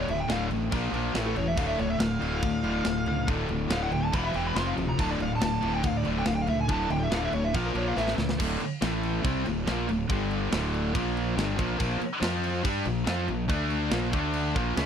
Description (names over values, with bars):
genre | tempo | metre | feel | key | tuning
heavy metal | 141 BPM | 4/4 | straight | D minor | A4 = 445 Hz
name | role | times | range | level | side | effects
bluesy overdriven lead guitar | melody | 0.0-8.1 s | A4 to C6 | -32 LUFS | equal | distortion
cranked stack guitar | riff | 0.0-14.9 s | D2 to G4 | -33 LUFS | equal | overdrive
heavy high-gain guitar | riff | 0.0-14.9 s | D2 to G4 | -32 LUFS | left 12 dB | distortion
heavy high-gain guitar | riff | 0.0-14.9 s | D2 to G4 | -33 LUFS | right 9 dB | distortion
fuzz fingered electric bass | bass | 0.0-14.9 s | D1 to G2 | -32 LUFS | equal | overdrive
tight metal drum kit | drums | 0.1-14.9 s | crash cymbal, kick drum, snare drum | -33 LUFS | equal | none
room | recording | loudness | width
little or no reverb | dry, close 1970s-style studio recording | -25 LUFS | side -8 dB against mid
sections
0.0-8.4 A section; 8.4-14.9 B section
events
lead electric guitar solo 0.0-8.4; drum fill 8.0-8.4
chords
0.0 D5; 0.7 Bb5; 1.1 A5; 1.6 Dm; 4.1 E5; 4.6 F5; 5.0 D5; 7.5 Bb5; 8.0 A5; 8.4 D5; 8.8 A5; 9.2 Dm; 10.1 G5; 10.5 D5; 10.9 Bb5; 11.4 Dm; 11.8 Bb5; 12.2 F5; 12.6 Bb5; 13.5 D5; 13.9 Bb5; 14.1 D5